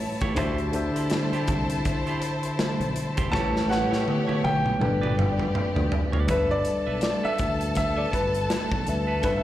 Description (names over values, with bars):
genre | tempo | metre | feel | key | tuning
lush 1970s-style soul | 81 BPM | 4/4 | swing 58% on 16ths | G major | A4 = 441 Hz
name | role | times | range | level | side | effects
warm symphonic violin section | second line | 0.0-9.4 s | A3 to A5 | -32 LUFS | left 2 dB | slapback echo
mellow tine electric piano | accompaniment | 0.0-9.4 s | D3 to G5 | -28 LUFS | left 1 dB | overdrive, slapback echo
modern studio drum kit | drums | 0.0-9.4 s | hi-hat, kick drum, snare drum, toms | -28 LUFS | equal | none
clean electric guitar | riff | 0.2-9.4 s | E4 to E5 | -36 LUFS | right 6 dB | slapback echo
fingered electric bass | bass | 0.2-9.4 s | E1 to D2 | -30 LUFS | equal | none
clear grand piano | melody | 3.3-9.4 s | B4 to A5 | -28 LUFS | equal | slapback echo
room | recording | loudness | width
light reverb, studio reverb | live gig heard through the venue's PA, recital hall reverb | -22 LUFS | side -13 dB against mid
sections
0.0-6.3 A section; 6.3-9.4 B section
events
drum fill 3.3-6.3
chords
0.4 D9sus4; 3.3 A7; 4.8 Gmaj7; 6.3 G69